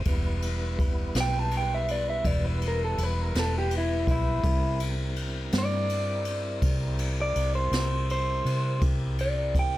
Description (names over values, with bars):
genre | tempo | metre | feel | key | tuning
slow blues | 55 BPM (dotted quarters) | 12/8 | straight | unclear | A4 = 441 Hz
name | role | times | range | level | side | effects
tonewheel organ | sustained chords | 0.0-9.8 s | G3 to B4 | -36 LUFS | right 1 dB | slow rotary speaker
vintage muted fingered electric bass | bass | 0.0-9.8 s | E1 to C3 | -28 LUFS | equal | none
jazz brush drum kit | drums | 0.1-9.7 s | kick drum, ride cymbal, snare drum | -30 LUFS | equal | none
electric guitar through a small old amp | melody | 1.2-9.8 s | E4 to A5 | -29 LUFS | equal | none
room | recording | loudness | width
little or no reverb | none | -24 LUFS | side -15 dB against mid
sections
0.0-9.8 A section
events
clean electric guitar solo 0.0-9.8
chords
0.1 Em; 4.4 C7